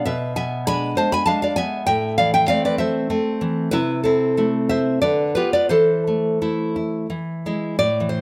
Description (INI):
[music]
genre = romantic piece for solo classical guitar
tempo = 84-100 BPM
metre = 3/4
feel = rubato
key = A minor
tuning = A4 = 441 Hz
[part]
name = nylon-string guitar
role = solo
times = 0.0-8.2 s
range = A2 to B5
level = -20 LUFS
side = equal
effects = none
[sound]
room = light reverb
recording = close, detailed microphones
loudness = -20 LUFS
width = mono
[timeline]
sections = 0.0-7.8 A section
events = none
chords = 0.1 E7/B; 1.9 Am; 3.7 Am/C; 5.0 Bdim/D; 5.7 Am/E; 7.1 E